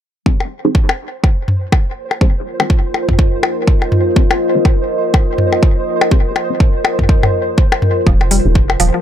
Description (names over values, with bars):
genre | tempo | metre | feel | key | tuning
minimal techno | 123 BPM | 4/4 | swing 59% on 16ths | unclear | A4 = 440 Hz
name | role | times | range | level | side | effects
filtered dub chord stab | stabs | 0.3-8.5 s | Eb4 to C5 | -20 LUFS | left 1 dB | phaser, wide subtle chorus, dub echo
electronic kick drum | drums | 0.3-8.7 s | none | -12 LUFS | equal | none
deep dark ambient pad | texture | 2.5-9.0 s | F4 to Eb5 | -18 LUFS | equal | chorus, built-in reverb, sidechain pumping
pulsing gated texture | texture | 1.0-9.0 s | C5 | -25 LUFS | right 5 dB | chorus, built-in reverb, sidechain pumping
electronic percussion blips and toms | percussion | 0.4-8.8 s | none | -17 LUFS | left 2 dB | overdrive, dub echo
mallet-like synth pluck | riff | 8.1-9.0 s | F3 to G3 | -18 LUFS | left 1 dB | chorus, phaser, cassette tape, sidechain pumping, ping-pong delay
rubbery square bass | bass | 8.1-8.9 s | F1 | -15 LUFS | equal | sidechain pumping
electronic hi-hat | drums | 8.3-8.9 s | none | -17 LUFS | right 3 dB | none
room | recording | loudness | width
little or no reverb | none | -12 LUFS | side -10 dB against mid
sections
0.3-9.0 A section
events
none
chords
0.3 Fm7